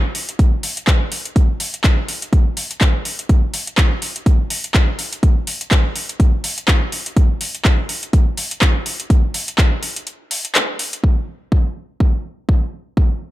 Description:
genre	house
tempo	124 BPM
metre	4/4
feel	swing 57% on 16ths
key	none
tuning	none
part	deep house drum kit	drums	0.1-11.0 s	handclaps, hi-hat	-20 LUFS	left 1 dB	overdrive
part	electronic kick drum	drums	0.4-13.1 s	none	-14 LUFS	equal	overdrive
room	little or no reverb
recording	none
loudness	-15 LUFS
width	side -16 dB against mid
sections	0.0-11.0 A section; 11.0-13.3 B section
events	break 10.1-11.0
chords	none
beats	0.39 0.87 | 1.36 1.84 2.33 2.81 | 3.29 3.78 4.26 4.75 | 5.23 5.71 6.20 6.68 | 7.17 7.65 8.13 8.62 | 9.10 9.58 10.07 10.55 | 11.04 11.52 12.00 12.49 | 12.97

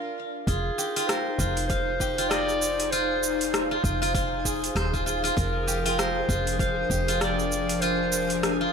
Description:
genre	organic downtempo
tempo	98 BPM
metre	4/4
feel	swing 58% on 16ths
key	F dorian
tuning	A4 = 439 Hz
part	steel-string zither	arpeggios	0.0-8.7 s	F4 to F5	-29 LUFS	right 1 dB	ping-pong delay
part	warm clarinet	melody	0.5-8.7 s	Ab4 to D5	-30 LUFS	left 2 dB	digital delay
part	woody FM bass	bass	0.5-8.7 s	Eb1 to F1	-32 LUFS	equal	sidechain pumping
part	deep house drum kit	drums	0.5-8.6 s	cabasa, hi-hat, rim click	-30 LUFS	right 1 dB	overdrive
part	electronic kick drum	drums	0.5-7.0 s	none	-31 LUFS	equal	overdrive
part	twinkling granular texture	texture	1.5-8.7 s	Ab4	-38 LUFS	right 2 dB	built-in reverb
part	airy breathy pad	sustained chords	0.8-8.7 s	F3 to F5	-31 LUFS	left 1 dB	chorus, sidechain pumping
room	light reverb, digital ambience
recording	none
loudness	-23 LUFS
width	side -6 dB against mid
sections	0.5-8.7 A section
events	stop 0.0-0.5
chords	0.5 Fm7; 5.4 Gm7/F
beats	| 0.47 1.09 1.70 2.31 | 2.92 3.54 4.15 4.76 | 5.37 5.98 6.60 7.21 | 7.82 8.43

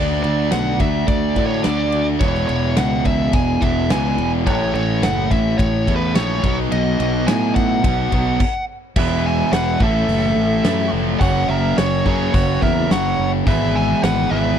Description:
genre	classic rock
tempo	107 BPM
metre	4/4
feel	straight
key	E major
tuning	A4 = 442 Hz
part	biting lead guitar	melody	0.0-14.6 s	B4 to G#5	-23 LUFS	equal	overdrive, slapback echo
part	biting overdriven guitar	riff	0.0-14.6 s	E2 to D4	-22 LUFS	right 11 dB	none
part	sludgy distorted guitar	riff	0.0-14.6 s	E2 to G#4	-23 LUFS	left 14 dB	overdrive
part	growling fingered electric bass	bass	0.0-14.5 s	E1 to A2	-22 LUFS	equal	overdrive
part	huge arena drum kit	drums	0.2-14.2 s	crash cymbal, hi-hat, kick drum, ride cymbal, snare drum	-22 LUFS	equal	none
part	nasal lead guitar with a parked wah	second line	9.0-14.6 s	F#4 to E5	-28 LUFS	right 6 dB	overdrive
room	small room ambience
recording	dry, close 1970s-style studio recording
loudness	-16 LUFS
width	side -8 dB against mid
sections	0.0-9.0 A section; 9.0-14.6 B section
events	stop 8.4-9.0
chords	0.0 D; 2.2 E; 4.5 A; 6.4 B; 9.0 E; 9.8 A; 11.2 F#; 13.5 E/G#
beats	0.53 1.09 1.65 | 2.22 2.78 3.35 3.91 | 4.47 5.04 5.60 6.16 | 6.72 7.29 7.85 8.41 | 8.97 9.53 10.09 10.66 | 11.22 11.78 12.34 12.90 | 13.46 14.03

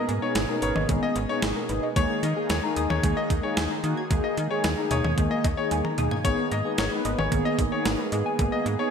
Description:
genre	synth-pop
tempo	112 BPM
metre	4/4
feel	straight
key	G# minor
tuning	A4 = 440 Hz
part	bright grand piano	second line	0.0-8.9 s	C#5 to D#5	-31 LUFS	left 4 dB	ping-pong delay
part	mellow synth brass	accompaniment	0.0-8.9 s	A#3 to B4	-29 LUFS	left 1 dB	chorus
part	brassy analog pad	sustained chords	0.0-8.9 s	B2 to G#4	-32 LUFS	right 1 dB	chorus
part	soft round pluck	arpeggios	0.0-8.9 s	G#3 to G#6	-33 LUFS	right 1 dB	chorus, phaser, ping-pong delay
part	slap-like FM bass	bass	0.1-8.8 s	G#1 to D#3	-29 LUFS	equal	none
part	clean 12-bit digital drum machine	drums	0.1-8.8 s	cowbell, hi-hat, kick drum, snare drum, toms	-28 LUFS	equal	gated reverb
room	moderate lush hall reverb, RT60 1.6 s, digital ambience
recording	bright 1980s-style digital production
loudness	-23 LUFS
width	side -7 dB against mid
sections	0.0-8.9 A section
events	drum fill 5.7-6.2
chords	0.0 G#madd9; 2.0 D#sus4; 6.2 G#madd9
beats	0.36 0.89 1.43 | 1.96 2.50 3.04 3.57 | 4.11 4.64 5.18 5.71 | 6.25 6.79 7.32 7.86 | 8.39

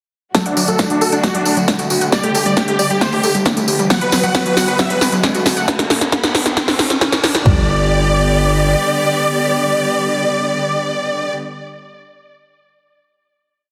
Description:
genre	uplifting trance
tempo	135 BPM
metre	4/4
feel	straight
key	G major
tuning	A4 = 442 Hz
part	supersaw chords	melody	0.3-11.3 s	D4 to F#5	-20 LUFS	equal	analog chorus, sidechain pumping, low-pass filter, delay
part	dark studio string section	sustained chords	0.3-11.3 s	D3 to G4	-25 LUFS	equal	sidechain pumping
part	analog pluck	arpeggios	0.3-7.7 s	F#3 to F#5	-23 LUFS	equal	chorus, sidechain pumping, delay
part	big-room dance drum kit	drums	0.3-7.6 s	kick drum, toms	-19 LUFS	equal	high-pass filter on kick, high-pass filter on toms, high-pass filter on room
part	big-room dance drum kit	drums	0.3-7.4 s	hi-hat, snare drum	-20 LUFS	equal	none
part	tambourine	percussion	0.3-5.7 s	none	-27 LUFS	equal	none
part	riser	sound effects	1.8-7.5 s	none	-28 LUFS	equal	none
part	gritty driven synth bass	bass	0.5-8.8 s	E1 to D2	-24 LUFS	equal	sidechain pumping, high-pass filter
room	moderate lush hall reverb, RT60 2.1 s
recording	heavily compressed radio sound, multiband compression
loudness	-16 LUFS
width	mono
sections	0.3-7.5 build; 7.5-11.0 final chord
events	build-up 0.3-7.5; drum fill 0.3-7.5; filter sweep on supersaw synth 0.3-5.7; filter sweep on synth arpeggio sound 0.3-5.7; riser 1.9-7.5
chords	0.3 D; 2.1 Gsus2; 3.9 Bm/F#; 5.7 N.C.; 7.5 G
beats	| 0.35 0.79 1.24 1.68 | 2.12 2.57 3.01 3.46 | 3.90 4.35 4.79 5.24 | 5.68 6.12 6.57 7.01 | 7.46 7.90 8.35 8.79 | 9.23 9.68 10.12 10.57

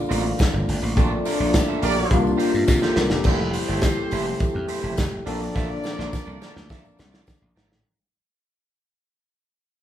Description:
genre	disco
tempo	105 BPM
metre	4/4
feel	straight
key	F major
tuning	A4 = 440 Hz
part	barky tine electric piano	accompaniment	0.0-7.9 s	F3 to C5	-27 LUFS	left 5 dB	overdrive, phaser
part	mellow French horn section	sustained chords	0.0-7.8 s	Bb2 to G4	-28 LUFS	right 1 dB	none
part	electric guitar at the edge of break-up	accompaniment	0.1-7.7 s	A3 to E5	-32 LUFS	right 4 dB	warbly pitch drift
part	slap bass	bass	0.1-7.8 s	E1 to C3	-27 LUFS	equal	none
part	warm soul drum kit	drums	0.1-7.8 s	crash cymbal, hi-hat, kick drum, snare drum	-24 LUFS	equal	none
part	tambourine	percussion	0.1-7.7 s	none	-41 LUFS	left 4 dB	none
part	warm horn section	stabs	1.8-7.5 s	D4 to D5	-31 LUFS	right 2 dB	none
room	wet large studio reverb, RT60 0.9 s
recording	band playing live in one room, lossy compression artefacts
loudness	-20 LUFS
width	side -11 dB against mid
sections	0.0-3.3 A section; 3.3-7.8 B section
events	drum fill 2.7-3.3, 5.6-7.8; fade-out 3.3-7.8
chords	0.0 C9sus4; 1.0 Bbmaj7; 2.1 C7sus4; 3.3 Fmaj9; 5.3 Bbmaj7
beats	0.39 | 0.97 1.54 2.11 2.69 | 3.26 3.83 4.40 4.98 | 5.55 6.13 6.70 7.28

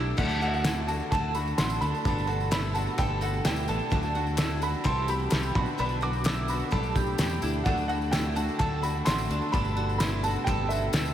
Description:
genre	indie folk with a building arrangement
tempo	128 BPM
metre	4/4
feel	straight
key	D mixolydian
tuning	A4 = 441 Hz
part	picked steel-string acoustic guitar	accompaniment	0.0-11.1 s	B2 to A4	-35 LUFS	left 4 dB	none
part	mellow tonewheel organ	sustained chords	0.0-11.1 s	B2 to G4	-38 LUFS	right 1 dB	slow rotary speaker, chorus vibrato
part	bowl-back mandolin	arpeggios	0.0-11.1 s	D4 to A4	-34 LUFS	right 4 dB	none
part	fingered electric bass	bass	0.0-11.1 s	G1 to E2	-30 LUFS	equal	none
part	dark upright piano	melody	0.2-11.1 s	E5 to D6	-32 LUFS	right 1 dB	analog chorus, analog delay
part	cloth-damped thuddy drum kit	drums	0.2-11.0 s	crash cymbal, kick drum, snare drum	-30 LUFS	equal	none
part	tambourine	percussion	0.2-11.1 s	none	-45 LUFS	left 7 dB	none
part	group handclap	percussion	0.7-11.0 s	none	-43 LUFS	left 4 dB	none
room	wet huge ambient reverb, RT60 7.9 s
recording	dreamy mix soaked in reverb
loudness	-25 LUFS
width	side -10 dB against mid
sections	0.2-11.1 A section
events	none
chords	0.2 D; 2.0 Gadd9; 3.9 D; 4.9 C; 5.6 Bm; 6.7 Gadd9/B; 7.7 D; 9.5 Gadd9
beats	| 0.18 0.65 1.11 1.58 | 2.05 2.52 2.98 3.45 | 3.92 4.38 4.85 5.32 | 5.79 6.25 6.72 7.19 | 7.66 8.13 8.59 9.06 | 9.53 10.00 10.46 10.93

